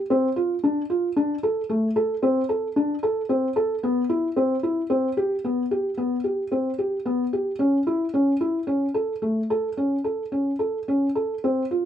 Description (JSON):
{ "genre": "contemporary instrumental, contemporary", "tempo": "112 BPM", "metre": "7/4", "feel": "straight", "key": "unclear", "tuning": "A4 = 441 Hz", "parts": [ { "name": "felt-muted upright piano", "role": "solo", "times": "0.1-11.9 s", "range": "A3 to A4", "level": "-22 LUFS", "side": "equal", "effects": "none" } ], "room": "moderate studio reverb, RT60 0.6 s", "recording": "none", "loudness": "-22 LUFS", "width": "side -10 dB against mid", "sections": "0.0-11.4 A section", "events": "none", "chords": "none", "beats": "| 0.09 0.63 1.16 1.70 2.23 2.77 3.30 | 3.84 4.37 4.90 5.44 5.98 6.52 7.05 | 7.59 8.14 8.68 9.22 9.77 10.32 10.87 | 11.43" }